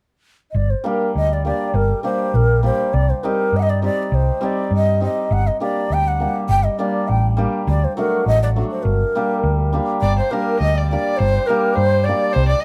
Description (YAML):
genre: balkan folk, Balkan wedding band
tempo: 101 BPM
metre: 2/4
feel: straight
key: G harmonic minor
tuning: A4 = 440 Hz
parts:
  - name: mellow long shakuhachi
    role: melody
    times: 0.5-12.6 s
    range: Bb4 to G5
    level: -23 LUFS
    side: equal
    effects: none
  - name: hollow-body short-scale fingered electric bass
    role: bass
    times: 0.5-12.5 s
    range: G1 to G2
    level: -20 LUFS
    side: equal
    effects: none
  - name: hammered dulcimer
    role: accompaniment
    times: 0.8-12.4 s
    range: F#3 to G4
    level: -25 LUFS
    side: equal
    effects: none
  - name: warm violin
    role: second line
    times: 10.0-12.6 s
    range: Bb4 to Eb5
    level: -28 LUFS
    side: equal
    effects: none
room: light reverb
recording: band playing live in one room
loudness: -19 LUFS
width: mono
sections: 0.6-10.0 A section; 10.0-12.6 A section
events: none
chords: 0.0 N.C.; 0.6 Gm; 2.9 Cm; 5.3 Gm; 7.7 D; 8.9 Gm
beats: | 0.55 1.15 | 1.74 2.34 | 2.93 3.53 | 4.12 4.72 | 5.31 5.90 | 6.50 7.09 | 7.68 8.27 | 8.86 9.44 | 10.03 10.61 | 11.20 11.78 | 12.36